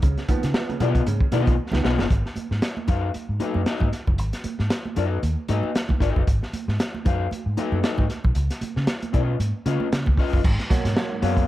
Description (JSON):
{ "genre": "funk", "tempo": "115 BPM", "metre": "4/4", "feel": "swing 56% on 16ths", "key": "G# dorian", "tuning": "A4 = 440 Hz", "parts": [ { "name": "clear upright piano", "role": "stabs", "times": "0.0-2.1, 10.4-11.4 s", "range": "G#2 to B3", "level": "-28 LUFS", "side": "right 4 dB", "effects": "slapback echo" }, { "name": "vintage muted fingered electric bass", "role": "bass", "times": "0.0-11.4 s", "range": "F#1 to C#3", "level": "-24 LUFS", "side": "equal", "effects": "none" }, { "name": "crunchy breakbeat drum kit", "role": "drums", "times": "0.0-11.5 s", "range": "crash cymbal, hi-hat, kick drum, snare drum", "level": "-23 LUFS", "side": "equal", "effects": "none" }, { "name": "congas", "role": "percussion", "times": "0.0-10.4 s", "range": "none", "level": "-33 LUFS", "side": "right 5 dB", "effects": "none" }, { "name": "electric guitar at the edge of break-up", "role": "accompaniment", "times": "0.8-11.4 s", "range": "B3 to E#5", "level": "-27 LUFS", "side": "left 7 dB", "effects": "none" } ], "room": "studio ambience", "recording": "none", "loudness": "-21 LUFS", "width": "side -15 dB against mid", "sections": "0.0-2.1 A section; 2.1-10.4 B section; 10.4-11.5 A section", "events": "drum fill 1.6-2.1", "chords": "0.0 C#9; 2.1 G#m7; 8.4 C#9; 10.4 G#m7", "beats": "| 0.03 0.55 1.07 1.59 | 2.10 2.63 3.15 3.67 | 4.19 4.71 5.23 5.75 | 6.28 6.80 7.32 7.84 | 8.36 8.88 9.40 9.93 | 10.45 10.97" }